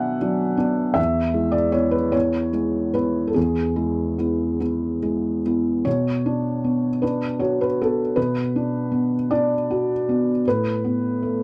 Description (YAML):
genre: neoclassical minimalist piano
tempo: 48-54 BPM (dotted quarters)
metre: 6/8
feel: rubato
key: B dorian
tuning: A4 = 442 Hz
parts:
  - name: felt-muted upright piano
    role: solo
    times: 0.0-11.4 s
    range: E2 to G#5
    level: -22 LUFS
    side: equal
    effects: none
room: little or no reverb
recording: dry, close 1970s-style studio recording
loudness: -22 LUFS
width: mono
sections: 0.0-5.9 A section; 5.9-11.4 A section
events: none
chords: 0.0 Bm; 1.0 E; 5.9 Bm; 10.4 Asus2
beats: | 0.98 2.14 | 3.36 4.61 | 5.86 7.02 | 8.17 9.30 | 10.45